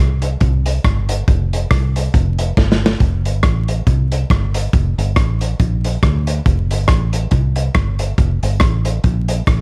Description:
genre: ska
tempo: 139 BPM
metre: 4/4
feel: swing 57% on 8ths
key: F major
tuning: A4 = 441 Hz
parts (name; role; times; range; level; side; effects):
- fingered electric bass; bass; 0.0-9.6 s; F1 to D2; -19 LUFS; equal; none
- crunchy breakbeat drum kit; drums; 0.2-9.6 s; hi-hat, kick drum, rim click, snare drum; -19 LUFS; equal; none
room: little or no reverb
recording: dark, warm production, vinyl crackle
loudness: -16 LUFS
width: mono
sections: 0.0-3.0 A section; 3.0-9.6 B section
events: drum fill 2.6-3.0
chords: none

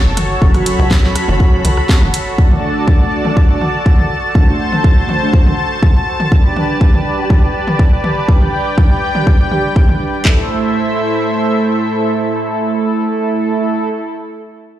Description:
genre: melodic techno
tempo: 122 BPM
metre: 4/4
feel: straight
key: A dorian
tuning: A4 = 440 Hz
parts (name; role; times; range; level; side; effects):
- lush unison pad; sustained chords; 0.0-13.9 s; A2 to B5; -18 LUFS; equal; chorus, sidechain pumping
- tight sequencer bass; bass; 0.1-2.1 s; F#1 to C#2; -16 LUFS; equal; sidechain pumping
- house drum kit; drums; 0.2-10.0 s; hi-hat, rim click, snare drum, toms; -21 LUFS; equal; studio reverb, sidechain pumping on hats, sidechain pumping on toms
- analog synth brass; stabs; 0.4-13.9 s; D3 to A4; -19 LUFS; right 2 dB; chorus, sidechain pumping, ping-pong delay
- house drum kit; drums; 0.4-10.4 s; handclaps, kick drum; -10 LUFS; equal; studio reverb
room: light reverb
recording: played on a big sound system in a bare room, stone room reverb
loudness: -11 LUFS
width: side -12 dB against mid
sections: 0.0-10.3 A section; 10.3-14.2 B section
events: filter sweep on analog polysynth 0.0-10.3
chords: 0.0 F#m; 2.4 D; 6.3 Gadd9; 10.3 Am

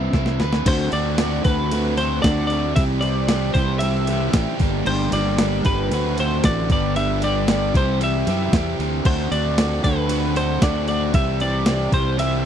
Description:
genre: indie rock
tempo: 115 BPM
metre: 4/4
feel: straight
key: D mixolydian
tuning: A4 = 443 Hz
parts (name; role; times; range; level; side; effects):
- twelve-string electric guitar; melody; 0.0-12.5 s; B4 to E5; -25 LUFS; left 1 dB; vibrato effect, tape echo
- overdriven electric guitar; riff; 0.0-12.5 s; G2 to B4; -23 LUFS; right 1 dB; none
- fuzz fingered electric bass; bass; 0.0-12.5 s; G1 to F#2; -23 LUFS; equal; overdrive
- clean 12-bit digital drum machine; drums; 0.1-12.3 s; crash cymbal, kick drum, ride cymbal, snare drum; -22 LUFS; equal; overdrive
room: little or no reverb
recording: dry, close 1970s-style studio recording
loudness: -18 LUFS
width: side -9 dB against mid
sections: 0.7-12.5 A section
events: drum fill 0.0-0.7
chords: 0.0 Cmaj7; 0.7 D7; 2.8 C; 4.6 Gm; 5.9 D7; 6.7 G; 7.7 C; 9.1 D7; 11.1 C

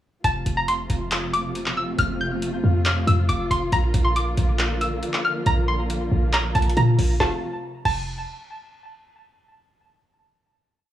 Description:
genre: hip hop, trap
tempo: 138 BPM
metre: 4/4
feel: half-time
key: F major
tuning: A4 = 440 Hz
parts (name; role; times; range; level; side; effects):
- string-like resonator pluck; melody; 0.2-8.1 s; A5 to G6; -26 LUFS; equal; chorus, low-pass filter, tape echo
- dark symphonic string section; sustained chords; 0.2-7.4 s; C3 to F4; -28 LUFS; equal; none
- short 808-style bass; bass; 0.2-8.3 s; F1 to Bb2; -22 LUFS; equal; none
- trap drum kit; drums; 0.2-8.0 s; crash cymbal, handclaps, hi-hat, snare drum; -28 LUFS; equal; none
room: light reverb, digital ambience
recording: worn, warbling old tape, cassette tape, warbly pitch drift, studio ambience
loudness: -20 LUFS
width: side -12 dB against mid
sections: 0.2-7.2 hook; 7.2-8.9 final chord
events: none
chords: 0.2 F; 3.7 Bb; 7.2 N.C.

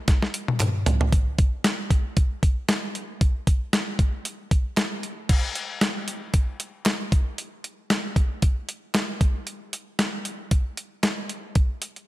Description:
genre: pop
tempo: 115 BPM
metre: 4/4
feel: swing 55% on 16ths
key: none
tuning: none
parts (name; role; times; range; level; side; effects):
- clean 12-bit digital drum machine; drums; 0.1-12.1 s; crash cymbal, hi-hat, kick drum, snare drum, toms; -22 LUFS; equal; none
- group handclap; percussion; 0.6-11.2 s; none; -38 LUFS; right 3 dB; none
room: light reverb, digital ambience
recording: none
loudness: -22 LUFS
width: side -17 dB against mid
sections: 0.0-1.1 A section; 1.1-5.3 B section; 5.3-12.1 C section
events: drum fill 0.1-1.1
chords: none

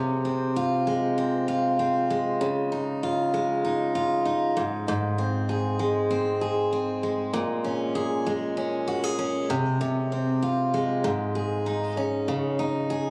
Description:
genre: pop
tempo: 97 BPM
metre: 4/4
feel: straight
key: Db major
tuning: A4 = 440 Hz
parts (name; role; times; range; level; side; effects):
- picked steel-string acoustic guitar; solo; 0.0-13.1 s; Ab2 to Ab4; -26 LUFS; equal; tape echo
room: moderate plate reverb, RT60 3.3 s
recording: recorded on a phone in the room, club reverb, compression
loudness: -26 LUFS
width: mono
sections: 0.0-12.3 A section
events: none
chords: 0.0 Fm/C; 2.4 Dbadd9; 4.6 Ab; 7.3 Bbm7; 9.5 Fm/C; 11.0 Absus4; 12.3 Dbsus2

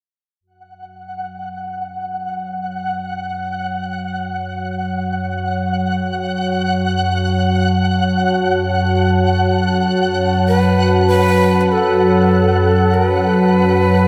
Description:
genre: dark ambient drone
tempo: 48 BPM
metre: 4/4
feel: straight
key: unclear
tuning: A4 = 440 Hz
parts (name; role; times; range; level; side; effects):
- dark analog pad; sustained chords; 0.4-14.1 s; F#4 to A5; -25 LUFS; equal; chorus
- analog drone; drone; 1.3-14.1 s; F#2 to F#3; -19 LUFS; equal; chorus
- flickering grainy texture; texture; 0.8-14.1 s; F#5; -25 LUFS; equal; built-in reverb
- breathy shakuhachi; melody; 10.5-14.1 s; A4 to B4; -19 LUFS; equal; diffuse ambient delay
room: wet cathedral reverb, RT60 6.4 s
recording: none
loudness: -17 LUFS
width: mono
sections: 0.4-14.1 A section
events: fade-in on analog synth pad 0.4-14.1; filter sweep on synth drone 0.4-14.1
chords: 0.4 F#m

